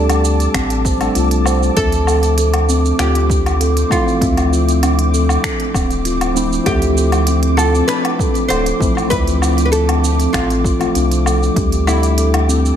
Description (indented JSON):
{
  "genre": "organic downtempo",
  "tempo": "98 BPM",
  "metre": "4/4",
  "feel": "straight",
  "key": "D minor",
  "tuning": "A4 = 439 Hz",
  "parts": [
    { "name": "oud", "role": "melody", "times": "0.0-12.8 s", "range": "D4 to C5", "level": "-21 LUFS", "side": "equal", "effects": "ping-pong delay" },
    { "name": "tine electric piano", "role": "accompaniment", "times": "0.0-12.8 s", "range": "F3 to E5", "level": "-21 LUFS", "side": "left 2 dB", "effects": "medium stereo tremolo, sidechain pumping, ping-pong delay" },
    { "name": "ethereal airy pad", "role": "sustained chords", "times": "0.0-12.8 s", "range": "C4 to D6", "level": "-23 LUFS", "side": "right 1 dB", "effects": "ensemble chorus, built-in reverb, tremolo, sidechain pumping" },
    { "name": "steel tongue drum", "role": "arpeggios", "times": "0.0-12.6 s", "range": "C4 to C5", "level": "-21 LUFS", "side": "equal", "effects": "ping-pong delay" },
    { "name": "warm sub bass", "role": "bass", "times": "0.0-12.7 s", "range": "D1 to D2", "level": "-17 LUFS", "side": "equal", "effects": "sidechain pumping" },
    { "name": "organic electronic drum kit", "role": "drums", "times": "0.1-12.8 s", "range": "finger snaps, hi-hat, shaker, woodblock", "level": "-22 LUFS", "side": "equal", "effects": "none" },
    { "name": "electronic kick drum", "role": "drums", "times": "0.5-11.7 s", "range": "none", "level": "-20 LUFS", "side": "equal", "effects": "overdrive" }
  ],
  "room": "light reverb, digital ambience",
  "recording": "none",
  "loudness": "-13 LUFS",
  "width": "side -9 dB against mid",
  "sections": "0.0-12.8 A section",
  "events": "none",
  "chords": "0.0 Gsus2/D; 1.8 Dm7; 11.6 Gsus2/D",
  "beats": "0.54 1.16 | 1.77 2.38 2.99 3.60 | 4.22 4.83 5.44 6.05 | 6.67 7.28 7.89 8.50 | 9.12 9.73 10.34 10.95 | 11.56 12.18"
}